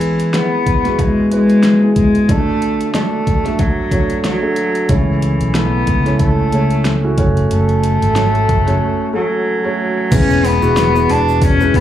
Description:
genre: piano-driven pop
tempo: 92 BPM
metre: 4/4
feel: swing 56% on 16ths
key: unclear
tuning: A4 = 440 Hz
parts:
  - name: warm cello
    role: melody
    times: 0.0-11.8 s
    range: E3 to D4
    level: -16 LUFS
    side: left 1 dB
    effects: none
  - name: dark baby grand piano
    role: accompaniment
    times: 0.0-11.8 s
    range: C#3 to E5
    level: -18 LUFS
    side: right 1 dB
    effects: none
  - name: pop drum kit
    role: drums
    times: 0.0-11.8 s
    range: crash cymbal, hi-hat, kick drum, snare drum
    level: -18 LUFS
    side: equal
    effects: overdrive
  - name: fingered electric bass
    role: bass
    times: 4.9-11.8 s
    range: E1 to C#2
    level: -16 LUFS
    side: equal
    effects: none
  - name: egg shaker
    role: percussion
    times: 10.1-11.7 s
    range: none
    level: -41 LUFS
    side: left 3 dB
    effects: none
room: light reverb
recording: live gig heard through the venue's PA, club reverb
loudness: -12 LUFS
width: side -11 dB against mid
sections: 0.0-10.1 A section; 10.1-11.8 B section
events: break 8.8-10.1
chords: 0.0 E; 2.3 D; 4.9 A; 7.2 F#m; 10.1 E

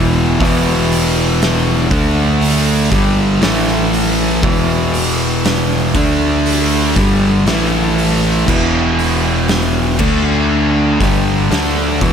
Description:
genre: stoner and doom metal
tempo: 60 BPM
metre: 4/4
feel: straight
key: E minor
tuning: A4 = 440 Hz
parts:
  - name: distorted electric guitar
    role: riff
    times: 0.0-12.1 s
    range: E2 to D4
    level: -20 LUFS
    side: equal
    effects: overdrive
  - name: thick fuzz guitar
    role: riff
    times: 0.0-12.1 s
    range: E2 to D4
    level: -17 LUFS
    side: left 8 dB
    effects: distortion
  - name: thick fuzz guitar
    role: riff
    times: 0.0-12.1 s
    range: E2 to D4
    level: -17 LUFS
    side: right 8 dB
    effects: distortion
  - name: overdriven fingered electric bass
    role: bass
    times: 0.0-12.1 s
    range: E1 to D2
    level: -21 LUFS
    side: equal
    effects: none
  - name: oversized low-tuned drum kit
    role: drums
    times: 0.4-12.1 s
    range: crash cymbal, hi-hat, kick drum, snare drum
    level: -18 LUFS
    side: equal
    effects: none
room: small room ambience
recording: none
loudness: -12 LUFS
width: side -7 dB against mid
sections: 0.0-12.1 A section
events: none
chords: 0.0 E5; 1.9 D5; 2.9 G5; 3.4 A5; 4.4 E5; 6.0 D5; 7.0 G5; 7.5 A5; 8.5 E5; 10.0 D5; 11.0 Em

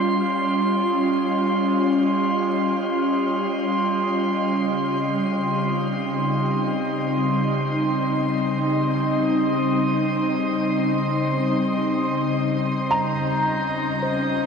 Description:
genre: ambient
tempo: free time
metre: none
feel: none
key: unclear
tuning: A4 = 440 Hz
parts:
  - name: ethereal airy pad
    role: sustained chords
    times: 0.0-14.5 s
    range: Db3 to Eb5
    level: -21 LUFS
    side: equal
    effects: ensemble chorus, built-in reverb
  - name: glass harmonica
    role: texture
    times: 0.0-14.5 s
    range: C6 to G6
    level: -27 LUFS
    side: right 2 dB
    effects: none
  - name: felt-muted upright piano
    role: melody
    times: 12.9-14.5 s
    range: Bb5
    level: -24 LUFS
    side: equal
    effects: none
  - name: mellow tine electric piano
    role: arpeggios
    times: 14.0-14.5 s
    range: C5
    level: -33 LUFS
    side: right 3 dB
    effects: medium stereo tremolo
room: wet shimmer reverb, RT60 7.9 s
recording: nothing above 10.8 kHz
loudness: -20 LUFS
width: side -6 dB against mid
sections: 0.0-14.5 A section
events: none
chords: 0.0 Dbmaj9#11; 4.4 Cm/Db; 13.0 Dbmaj9#11

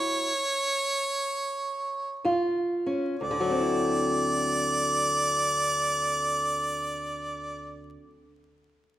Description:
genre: acoustic country blues, solo or duo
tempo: 62-70 BPM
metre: 4/4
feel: swing 65% on 8ths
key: D mixolydian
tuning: A4 = 438 Hz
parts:
  - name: bright harmonica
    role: melody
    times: 0.0-7.8 s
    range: C#5 to D5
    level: -26 LUFS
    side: right 1 dB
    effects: none
  - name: fingerpicked old ladder-braced acoustic guitar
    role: accompaniment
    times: 0.0-8.4 s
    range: D2 to F4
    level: -29 LUFS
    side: equal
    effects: none
room: moderate recital hall reverb, RT60 1.7 s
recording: recorded in a church or concert hall, vinyl crackle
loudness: -25 LUFS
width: side -13 dB against mid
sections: 0.0-3.2 A section; 3.2-7.1 B section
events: slowing down 0.0-3.2; stop 0.0-2.2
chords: 0.0 Dadd9; 2.2 Ebsus2; 3.2 D9

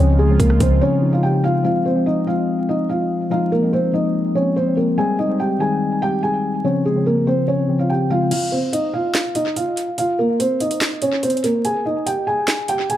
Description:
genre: hip hop, trap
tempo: 144 BPM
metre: 4/4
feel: half-time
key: F minor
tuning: A4 = 439 Hz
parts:
  - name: felt-muted upright piano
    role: melody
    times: 0.0-13.0 s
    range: Ab3 to Ab5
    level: -19 LUFS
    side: right 1 dB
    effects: tape echo
  - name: mellow tine electric piano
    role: accompaniment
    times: 0.0-8.3 s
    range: Db3 to Eb4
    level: -19 LUFS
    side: left 3 dB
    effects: auto-pan, tape echo
  - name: warm analog pad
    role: sustained chords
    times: 0.0-1.6 s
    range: Db3 to F4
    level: -29 LUFS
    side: right 3 dB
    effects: chorus
  - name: warm 808-style bass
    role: bass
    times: 0.0-0.8 s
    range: Db2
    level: -15 LUFS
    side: equal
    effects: none
  - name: trap drum kit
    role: drums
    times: 0.4-0.7, 8.3-13.0 s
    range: crash cymbal, handclaps, hi-hat, kick drum, rim click, snare drum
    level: -23 LUFS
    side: right 1 dB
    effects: tape echo
room: light reverb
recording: echo-heavy mix, vinyl crackle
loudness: -16 LUFS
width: side -12 dB against mid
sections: 0.0-1.6 A section; 1.6-8.3 B section; 8.3-13.0 C section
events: break 0.8-1.6; kick muted 8.3-13.0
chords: 0.0 Dbmaj7; 1.6 Fm; 5.0 Abmaj7; 6.6 Dbmaj7; 8.3 F5; 11.6 Ab5

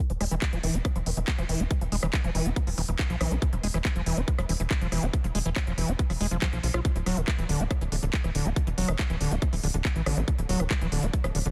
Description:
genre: psychedelic trance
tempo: 140 BPM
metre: 4/4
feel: straight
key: unclear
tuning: A4 = 438 Hz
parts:
  - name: overdriven acid bass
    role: riff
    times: 0.1-11.5 s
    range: D3 to F4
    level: -34 LUFS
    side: equal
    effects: sidechain pumping, dub echo
  - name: tight sequencer bass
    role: bass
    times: 0.1-11.5 s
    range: D1 to B1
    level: -31 LUFS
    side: equal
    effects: none
  - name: drum and bass drum kit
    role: drums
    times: 0.1-11.5 s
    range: handclaps, hi-hat, rim click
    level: -36 LUFS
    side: equal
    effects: none
  - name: electronic kick drum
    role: drums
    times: 0.4-11.2 s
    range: none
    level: -29 LUFS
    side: equal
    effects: none
room: light reverb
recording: dense, heavily limited modern master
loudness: -27 LUFS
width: mono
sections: 0.0-11.5 A section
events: filter sweep on acid bass 0.0-11.5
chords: 0.0 E5; 6.8 D5

